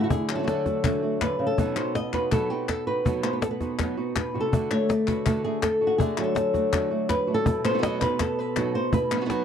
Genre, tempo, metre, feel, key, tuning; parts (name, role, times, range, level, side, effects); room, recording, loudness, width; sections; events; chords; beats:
flamenco; 163 BPM; 4/4; straight; A4 = 439 Hz
flamenco guitar; melody; 0.0-9.4 s; B2 to D#5; -24 LUFS; left 1 dB; tape echo
flamenco guitar; stabs; 0.1-9.4 s; B2 to F#4; -31 LUFS; right 8 dB
cajon; percussion; 0.1-9.4 s; -27 LUFS; left 3 dB
palmas hand claps; percussion; 0.3-9.3 s; -32 LUFS; left 9 dB
moderate studio reverb, RT60 0.6 s; dry, close 1970s-style studio recording; -23 LUFS; side -8 dB against mid
0.0-9.4 A section
0.0 D; 1.6 B; 4.5 D; 7.5 B
| 0.11 0.48 0.85 1.22 | 1.58 1.95 2.32 2.69 | 3.06 3.42 3.79 4.16 | 4.53 4.89 5.26 5.63 | 6.00 6.37 6.73 7.10 | 7.47 7.83 8.20 8.57 | 8.94 9.30